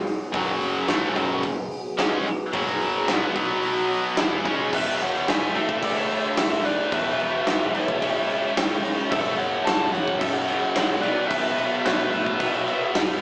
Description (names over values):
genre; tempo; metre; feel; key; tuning
hard rock; 110 BPM; 4/4; straight; F# minor; A4 = 441 Hz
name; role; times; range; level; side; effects
dark analog pad; sustained chords; 0.0-13.2 s; E3 to E5; -33 LUFS; equal; chorus
big rock drum kit; drums; 0.1-13.2 s; crash cymbal, hi-hat, kick drum, snare drum; -25 LUFS; equal; none
high-gain distorted guitar; riff; 0.3-4.7 s; F#2 to E4; -25 LUFS; equal; distortion
scooped high-gain guitar; riff; 0.3-13.2 s; E2 to E4; -26 LUFS; equal; distortion
hollow-body short-scale picked electric bass; bass; 0.3-13.2 s; E1 to A2; -42 LUFS; equal; none
nasal lead guitar with a parked wah; second line; 4.7-12.9 s; A4 to F#5; -30 LUFS; equal; overdrive
bluesy overdriven lead guitar; melody; 4.8-12.9 s; D5 to A5; -27 LUFS; equal; distortion
room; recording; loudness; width
moderate studio ambience, RT60 0.5 s; rough rehearsal-room recording, small speaker sound; -20 LUFS; side -27 dB against mid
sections
0.0-4.7 A section; 4.7-13.2 B section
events
none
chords
0.0 F#m; 3.4 B5; 4.2 F#5; 4.7 E5; 5.6 D5; 6.9 E5; 8.0 C#m; 9.1 F#5; 11.0 B5